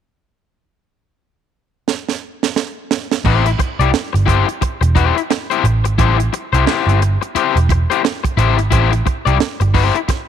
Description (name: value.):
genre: funk.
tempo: 88 BPM.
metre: 4/4.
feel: swing 60% on 16ths.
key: A minor.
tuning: A4 = 440 Hz.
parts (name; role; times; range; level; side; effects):
tight funk drum kit; drums; 1.9-10.3 s; crash cymbal, hi-hat, kick drum, snare drum; -19 LUFS; right 6 dB; none.
vintage muted picked electric bass; bass; 3.2-10.1 s; E1 to C2; -14 LUFS; right 1 dB; none.
crunchy overdriven guitar; accompaniment; 3.3-10.1 s; E4 to D5; -17 LUFS; left 11 dB; none.
room: little or no reverb.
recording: 1960s-style stereo with parts hard left and right.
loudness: -14 LUFS.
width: side -9 dB against mid.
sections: 0.5-3.2 A section; 3.2-10.3 B section.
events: drum fill 1.9-3.2.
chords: 0.5 N.C.; 3.2 Am7.